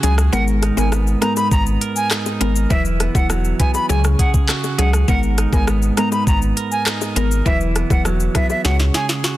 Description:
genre	dancehall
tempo	101 BPM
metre	4/4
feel	straight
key	G# minor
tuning	A4 = 440 Hz
part	bright silver concert flute	melody	0.0-9.1 s	E5 to B5	-24 LUFS	equal	tape echo
part	mallet-like synth pluck	accompaniment	0.0-9.4 s	F#3 to C#5	-24 LUFS	left 2 dB	chorus
part	clean electric guitar	arpeggios	0.0-9.4 s	G#2 to A#4	-24 LUFS	right 3 dB	spring reverb
part	sub bass with octave	bass	0.0-8.9 s	E1 to C#2	-18 LUFS	equal	none
part	afro-pop drum kit	drums	0.0-9.4 s	handclaps, hi-hat, kick drum, rim click, shaker, snare drum	-20 LUFS	equal	none
part	bongos	percussion	0.0-8.6 s	none	-32 LUFS	left 8 dB	none
room	digital ambience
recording	dense, heavily limited modern master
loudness	-15 LUFS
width	side -15 dB against mid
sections	0.0-9.4 A section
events	kick muted 0.3-0.9; drum fill 8.6-9.4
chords	0.3 G#madd9; 2.7 Esus2; 3.9 C#sus4; 5.1 G#madd9; 7.5 Esus2; 8.6 C#sus4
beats	| 0.33 0.92 1.52 2.11 | 2.71 3.30 3.89 4.49 | 5.08 5.68 6.27 6.86 | 7.46 8.05 8.65 9.24

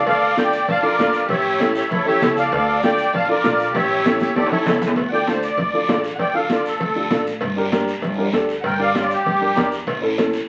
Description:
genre	latin, cumbia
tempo	196 BPM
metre	4/4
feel	straight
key	D harmonic minor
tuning	A4 = 440 Hz
part	musette accordion	melody	0.0-9.7 s	F4 to A5	-22 LUFS	equal	none
part	dark erhu	second line	0.0-4.8 s	E4 to D5	-26 LUFS	equal	none
part	upright bass	bass	0.1-10.4 s	G1 to F2	-32 LUFS	equal	none
part	congas	percussion	0.1-10.3 s	none	-28 LUFS	equal	none
part	cowbell and timbales	percussion	0.1-10.3 s	none	-30 LUFS	equal	none
part	guiro	percussion	0.1-10.5 s	none	-34 LUFS	equal	none
part	dark upright piano	accompaniment	0.4-10.3 s	C#4 to C#5	-25 LUFS	equal	none
room	wet club reverb, RT60 0.8 s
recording	very old 78 rpm record, vinyl crackle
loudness	-19 LUFS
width	mono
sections	0.0-5.0 A section; 5.0-10.5 B section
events	drum fill 4.1-5.0; accordion solo 5.0-10.5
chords	0.1 Dm; 1.3 A7; 2.5 Dm; 3.7 A7; 5.0 Dm; 7.4 Gm; 9.9 A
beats	| 0.07 0.38 0.68 0.99 | 1.30 1.60 1.91 2.21 | 2.52 2.83 3.13 3.44 | 3.75 4.05 4.36 4.67 | 4.97 5.28 5.59 5.89 | 6.20 6.51 6.81 7.12 | 7.43 7.73 8.04 8.35 | 8.65 8.96 9.27 9.57 | 9.88 10.19

